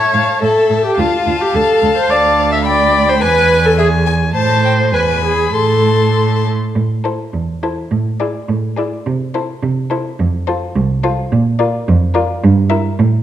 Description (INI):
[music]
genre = quick classical-period movement for string quartet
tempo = 106 BPM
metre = 2/4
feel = rubato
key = A minor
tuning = A4 = 440 Hz
[part]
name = rich violin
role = melody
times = 0.0-12.9 s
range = C5 to A5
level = -22 LUFS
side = left 9 dB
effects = none
[part]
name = dark violin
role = second line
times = 0.0-12.9 s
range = G#4 to C6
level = -22 LUFS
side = left 4 dB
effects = none
[part]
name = rich viola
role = accompaniment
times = 0.0-12.9 s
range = E4 to E5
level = -15 LUFS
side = equal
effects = none
[part]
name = rich cello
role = bass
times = 0.1-13.2 s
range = C2 to C3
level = -16 LUFS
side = right 3 dB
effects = none
[sound]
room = wet recital hall reverb, RT60 1.4 s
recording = dark, warm production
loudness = -12 LUFS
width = side -11 dB against mid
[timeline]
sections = 0.0-6.8 A section; 6.8-13.2 B section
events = none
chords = 0.0 A; 1.0 Dm; 2.1 Bm7b5/D; 3.2 E; 4.4 Am; 4.9 E; 5.5 Am; 7.9 E7/A; 9.1 Am/C; 10.2 F; 11.3 Bb; 12.4 Edim/G